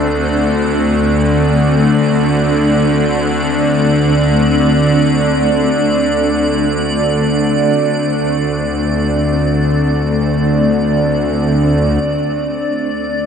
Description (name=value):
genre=dark ambient drone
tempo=free time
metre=none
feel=none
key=unclear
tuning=A4 = 439 Hz
part: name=granular cloud pad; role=sustained chords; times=0.0-12.1 s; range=A3 to D4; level=-18 LUFS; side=left 1 dB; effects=built-in reverb
part: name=bowed-like drone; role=drone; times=0.0-13.3 s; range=D2 to D3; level=-14 LUFS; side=equal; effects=built-in reverb
part: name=icy glass pad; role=texture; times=0.0-13.3 s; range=D5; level=-20 LUFS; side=right 3 dB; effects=chorus, built-in reverb
room=wet cathedral reverb, RT60 4.9 s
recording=nothing above 10.3 kHz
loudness=-12 LUFS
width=side -7 dB against mid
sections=0.0-12.0 A section; 12.0-13.3 B section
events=none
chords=0.0 D5